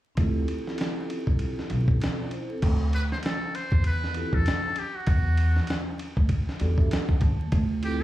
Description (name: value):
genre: hip hop, jazz-hop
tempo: 98 BPM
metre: 4/4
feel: swing 57% on 16ths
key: D dorian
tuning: A4 = 440 Hz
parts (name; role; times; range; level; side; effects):
- vibraphone with soft mallets; accompaniment; 0.2-8.0 s; B3 to A5; -34 LUFS; equal; slapback echo
- upright bass; bass; 0.2-8.0 s; B1 to F2; -26 LUFS; equal; none
- dusty soul sampler-style drum kit; drums; 0.2-8.0 s; crash cymbal, hi-hat, kick drum, ride cymbal, snare drum; -27 LUFS; equal; none
- trumpet with metal mute; melody; 2.9-8.0 s; F#4 to C5; -31 LUFS; left 1 dB; slapback echo
room: small room ambience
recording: live gig heard through the venue's PA, club reverb, vinyl crackle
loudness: -23 LUFS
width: side -15 dB against mid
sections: 0.2-2.6 A section; 2.6-8.0 B section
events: vibraphone fill 6.3-7.5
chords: 0.2 Dm11; 5.1 Em11; 7.5 Dm11